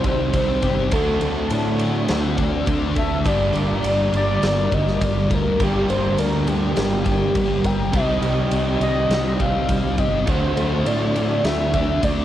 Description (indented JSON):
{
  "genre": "rock, shoegaze and dream pop",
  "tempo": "103 BPM",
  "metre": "4/4",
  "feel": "straight",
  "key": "C minor",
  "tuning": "A4 = 442 Hz",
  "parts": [
    { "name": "warm velvety synth lead", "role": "melody", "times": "0.0-12.2 s", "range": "G4 to G5", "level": "-24 LUFS", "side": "equal", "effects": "chorus, tape echo" },
    { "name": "picked twelve-string acoustic guitar", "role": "arpeggios", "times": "0.0-12.2 s", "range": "F#3 to Bb4", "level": "-30 LUFS", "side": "left 6 dB", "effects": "ensemble chorus, cassette tape, tape echo" },
    { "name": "crunchy overdriven guitar", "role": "riff", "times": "0.0-12.2 s", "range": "G2 to G4", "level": "-25 LUFS", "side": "right 7 dB", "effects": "reverse reverb, cassette tape" },
    { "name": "thick fuzz guitar", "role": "riff", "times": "0.0-12.2 s", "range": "G2 to D4", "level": "-24 LUFS", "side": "left 6 dB", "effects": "distortion, ensemble chorus, cassette tape" },
    { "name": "modern bright fingered electric bass", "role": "bass", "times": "0.0-12.2 s", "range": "G1 to A2", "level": "-25 LUFS", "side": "equal", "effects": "tube saturation" },
    { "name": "huge arena drum kit", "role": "drums", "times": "0.0-12.2 s", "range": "kick drum, ride cymbal, snare drum", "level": "-26 LUFS", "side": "equal", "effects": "cassette tape" }
  ],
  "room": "light reverb",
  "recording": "home recording on cassette",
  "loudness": "-18 LUFS",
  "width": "side -12 dB against mid",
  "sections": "0.0-12.2 A section",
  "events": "none",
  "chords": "0.0 Cm; 0.9 D7; 3.3 Gm; 7.9 Cm; 10.3 D7",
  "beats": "0.33 | 0.92 1.50 2.09 2.67 | 3.26 3.84 4.43 5.01 | 5.60 6.18 6.76 7.35 | 7.93 8.52 9.10 9.69 | 10.27 10.86 11.44 12.03"
}